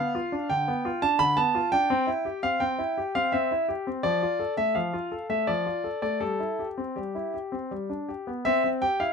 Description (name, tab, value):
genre	classical-period piano sonatina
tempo	83 BPM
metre	3/4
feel	rubato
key	C major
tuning	A4 = 438 Hz
part	bright grand piano	solo	0.0-9.1 s	D3 to B5	-24 LUFS	equal	none
room	light reverb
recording	close, detailed microphones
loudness	-24 LUFS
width	side -6 dB against mid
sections	0.0-8.5 A section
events	none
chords	0.0 Dm6; 1.9 C; 4.0 F6; 6.2 C/G; 7.7 G; 8.5 C